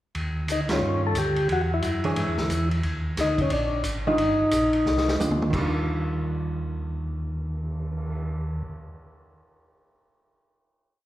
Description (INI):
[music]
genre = soul jazz organ trio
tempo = 179 BPM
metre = 4/4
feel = swing 64% on 8ths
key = Eb major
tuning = A4 = 440 Hz
[part]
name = mellow tonewheel organ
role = bass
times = 0.1-8.6 s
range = G1 to G#2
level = -28 LUFS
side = equal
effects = chorus vibrato, slow rotary speaker
[part]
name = vintage drum kit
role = drums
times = 0.1-8.1 s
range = crash cymbal, cymbal swell, hi-hat, kick drum, ride cymbal, snare drum, toms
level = -32 LUFS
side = equal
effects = none
[part]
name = percussive tonewheel organ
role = melody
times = 0.5-5.2 s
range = Db4 to A4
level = -24 LUFS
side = left 1 dB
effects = slow rotary speaker
[part]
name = hollow-body jazz guitar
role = accompaniment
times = 0.7-8.8 s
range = Eb3 to C#5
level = -30 LUFS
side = right 2 dB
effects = none
[sound]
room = wet recital hall reverb, RT60 1.4 s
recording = recorded in a church or concert hall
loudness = -23 LUFS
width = side -14 dB against mid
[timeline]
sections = 0.2-5.5 A section; 5.5-8.2 final chord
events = band accent 0.7; drum fill 4.9-5.5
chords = 0.2 Ebmaj9; 1.5 E13; 2.8 Ebmaj9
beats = | 0.15 0.49 0.82 1.16 | 1.49 1.83 2.16 2.50 | 2.84 3.17 3.51 3.84 | 4.18 4.51 4.85 5.19 | 5.52 5.86 6.19 6.53 | 6.87 7.20 7.54 7.87